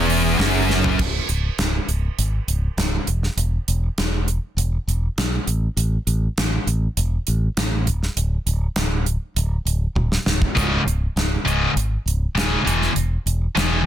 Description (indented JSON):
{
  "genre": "hard rock",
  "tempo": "100 BPM",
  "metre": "4/4",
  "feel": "straight",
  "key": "C# phrygian",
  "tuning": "A4 = 440 Hz",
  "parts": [
    { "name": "tonewheel organ", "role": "sustained chords", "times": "0.0-0.9 s", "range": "C#4 to B4", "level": "-32 LUFS", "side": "left 1 dB", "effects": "slow rotary speaker" },
    { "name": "overdriven electric guitar", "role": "riff", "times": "0.0-1.0 s", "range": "E2 to F#2", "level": "-24 LUFS", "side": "right 2 dB", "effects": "none" },
    { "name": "scooped high-gain guitar", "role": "riff", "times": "0.0-1.0, 10.6-13.8 s", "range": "C#2 to E3", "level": "-20 LUFS", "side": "left 1 dB", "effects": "distortion" },
    { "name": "modern bright fingered electric bass", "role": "bass", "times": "0.0-13.9 s", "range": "C#1 to B1", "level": "-21 LUFS", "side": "equal", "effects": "none" },
    { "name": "gated 80s drum kit", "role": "drums", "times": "0.1-13.7 s", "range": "crash cymbal, hi-hat, kick drum, snare drum, toms", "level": "-23 LUFS", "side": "right 1 dB", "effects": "none" }
  ],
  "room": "light reverb",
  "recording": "dense, heavily limited modern master",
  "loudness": "-19 LUFS",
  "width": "side -11 dB against mid",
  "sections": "1.0-13.9 A section",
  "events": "drum fill 0.7, 10.0-10.6",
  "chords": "0.0 C#m; 1.0 C#5; 3.1 E5; 5.5 A5; 7.9 N.C.; 10.6 C#5; 12.7 E5"
}